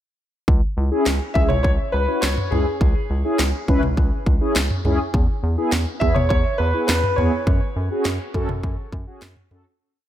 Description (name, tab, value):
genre	synth-pop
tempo	103 BPM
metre	4/4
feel	straight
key	C# minor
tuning	A4 = 440 Hz
part	round analog bass	bass	0.5-9.6 s	C#2 to F#2	-22 LUFS	equal	none
part	house drum kit	drums	0.5-9.6 s	kick drum, snare drum, toms	-21 LUFS	equal	none
part	mellow synth brass	accompaniment	0.8-9.6 s	B3 to B4	-25 LUFS	equal	chorus
part	warm concert grand piano	melody	1.3-8.9 s	G#4 to E5	-24 LUFS	equal	analog chorus, tape echo
room	light reverb, digital ambience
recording	none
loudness	-18 LUFS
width	side -12 dB against mid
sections	0.5-9.8 verse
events	fade-out 7.5-9.8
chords	0.5 C#m; 5.1 E; 7.5 F#m